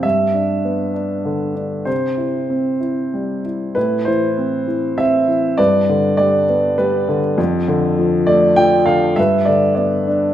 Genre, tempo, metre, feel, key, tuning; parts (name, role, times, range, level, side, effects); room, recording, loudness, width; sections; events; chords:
classical, lyrical solo piano; 99 BPM; 3/4; rubato; A4 = 442 Hz
dark grand piano; solo; 0.0-10.3 s; F2 to G5; -14 LUFS; equal
moderate concert hall reverb, RT60 2.0 s; minimal, uncompressed stereo recording; -14 LUFS; side -11 dB against mid
0.0-3.8 A section; 3.8-10.3 B section
0.0 G; 1.9 C; 3.8 Am; 5.6 G; 7.4 Dm/F; 9.2 G